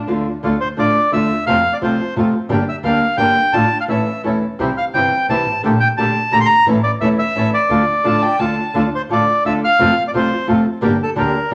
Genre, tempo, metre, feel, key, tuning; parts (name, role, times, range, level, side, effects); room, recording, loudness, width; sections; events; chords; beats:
tango; 173 BPM; 3/4; rubato; D minor; A4 = 440 Hz
warm violin; second line; 0.0-0.1, 8.1-8.7 s; G5 to A5; -26 LUFS; equal
bandoneon; stabs; 0.0-11.5 s; A3 to Bb4; -28 LUFS; equal
clear double bass; bass; 0.0-11.3 s; E1 to F2; -28 LUFS; equal
nylon-string guitar; accompaniment; 0.1-11.5 s; C3 to G4; -20 LUFS; equal
bandoneon; melody; 0.6-11.5 s; A4 to C6; -18 LUFS; equal
wet large studio reverb, RT60 1.1 s; -16 LUFS; mono
0.4-8.7 A section; 8.7-11.5 A section
0.4 Dm; 1.5 F; 2.5 Gm; 3.5 Dm/A; 3.9 A; 4.6 C; 5.6 Gmadd9/Bb; 6.7 A; 7.7 Dm; 9.8 F; 10.8 Gm
0.08 | 0.43 0.78 1.13 | 1.48 1.82 2.17 | 2.51 2.85 3.19 | 3.54 3.89 4.24 | 4.59 4.94 5.29 | 5.64 5.98 6.33 | 6.67 7.02 7.36 | 7.70 8.05 8.40 | 8.75 9.10 9.45 | 9.80 10.14 10.48 | 10.83 11.17 11.52